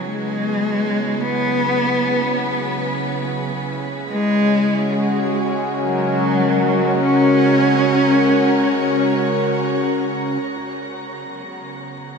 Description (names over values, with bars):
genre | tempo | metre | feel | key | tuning
ambient | 52 BPM | 3/4 | straight | C# dorian | A4 = 440 Hz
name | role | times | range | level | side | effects
dark cello | melody | 0.0-12.2 s | C#3 to C#4 | -19 LUFS | equal | ping-pong delay
warm analog pad | sustained chords | 0.0-12.2 s | C#3 to A#4 | -20 LUFS | equal | chorus
felt-muted upright piano | arpeggios | 10.6-12.2 s | F#4 | -45 LUFS | left 2 dB | none
room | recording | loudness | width
wet shimmer reverb, RT60 7.8 s | none | -16 LUFS | side -5 dB against mid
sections
0.0-10.4 A section; 10.4-12.2 B section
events
fade-in on analog synth pad 0.0-10.4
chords
0.0 C#m7; 3.5 F#add9/C#; 10.4 C#7(no3)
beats
| 0.05 1.21 2.36 | 3.52 4.67 5.82 | 6.98 8.13 9.28 | 10.44 11.59